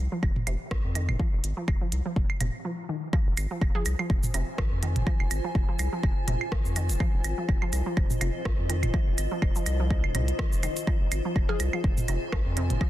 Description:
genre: minimal techno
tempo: 124 BPM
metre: 4/4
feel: swing 55% on 16ths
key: F minor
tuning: A4 = 440 Hz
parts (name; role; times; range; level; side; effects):
- round analog bass; bass; 0.0-12.8 s; Eb1 to F2; -28 LUFS; equal; sidechain pumping
- resonant blip pluck; riff; 0.1-12.8 s; C3 to F3; -36 LUFS; right 2 dB; chorus, sidechain pumping, dub echo
- electronic kick drum; drums; 0.2-12.9 s; none; -27 LUFS; equal; overdrive
- electronic claves, toms and woodblock; percussion; 0.2-12.9 s; none; -35 LUFS; right 3 dB; dub echo
- minimal click drum kit; drums; 0.5-12.8 s; hi-hat, rim click, shaker; -36 LUFS; right 1 dB; overdrive, soft clipping on snare
- granular cloud pad; texture; 3.9-12.9 s; F4 to Ab5; -35 LUFS; left 1 dB; built-in reverb, sidechain pumping
- hollow square pluck; melody; 3.7-4.4, 11.5-12.2 s; Ab4; -38 LUFS; left 4 dB; chorus, dub echo
room: little or no reverb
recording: dense, heavily limited modern master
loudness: -25 LUFS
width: side -14 dB against mid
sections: 0.0-3.1 A section; 3.1-12.9 B section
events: break 2.6-3.1; drop 3.1-12.9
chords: 0.0 N.C.; 3.1 Fm

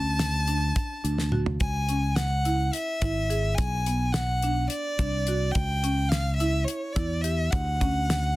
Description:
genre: progressive instrumental, band music in an uneven meter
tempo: 212 BPM (eighths)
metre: 7/8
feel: straight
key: unclear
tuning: A4 = 438 Hz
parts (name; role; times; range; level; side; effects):
- rich violin; melody; 0.0-8.4 s; C#5 to A5; -29 LUFS; equal; none
- buzzing marimba with medium hard mallets; arpeggios; 0.0-8.3 s; B3 to G#4; -33 LUFS; right 1 dB; none
- fingered electric bass; bass; 0.0-8.4 s; G#1 to E2; -27 LUFS; equal; none
- damped 70s drum kit; drums; 0.2-8.2 s; hi-hat, kick drum, snare drum, toms; -28 LUFS; equal; none
room: light reverb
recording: dense, heavily limited modern master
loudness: -24 LUFS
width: side -18 dB against mid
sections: 0.0-8.4 A section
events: drum fill 1.2-1.6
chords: 0.0 Dmaj7; 1.6 C#m; 3.6 Bm; 5.6 C#dim; 7.5 Dmaj7

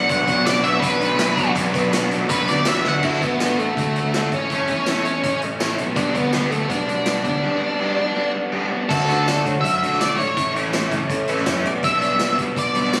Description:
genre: indie rock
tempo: 164 BPM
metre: 4/4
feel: straight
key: D major from 3.0 s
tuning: A4 = 437 Hz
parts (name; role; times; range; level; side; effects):
- octave-fuzz lead guitar; melody; 0.0-13.0 s; A3 to F#5; -24 LUFS; equal; distortion, digital delay
- glassy synth bell; second line; 0.0-2.8, 8.9-13.0 s; A4 to E5; -32 LUFS; equal; chorus, phaser
- overdriven electric guitar; riff; 0.0-13.0 s; B2 to A4; -27 LUFS; equal; ensemble chorus, digital delay
- raw garage guitar; riff; 0.0-13.0 s; A2 to F#4; -28 LUFS; equal; overdrive
- growling picked electric bass; bass; 0.1-13.0 s; F#1 to D3; -30 LUFS; equal; overdrive
- vintage drum kit; drums; 0.1-13.0 s; crash cymbal, hi-hat, kick drum, snare drum, tambourine; -29 LUFS; equal; none
room: light reverb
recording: recorded on a phone in the room, studio reverb, compression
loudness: -20 LUFS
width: mono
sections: 0.0-3.0 A section; 3.0-8.9 B section; 8.9-13.0 C section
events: lead electric guitar solo 0.0-3.0; drum fill 2.8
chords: 0.0 Bm; 3.0 D; 4.3 A; 5.8 G/B; 8.9 Dadd9; 10.2 A; 11.7 G/B

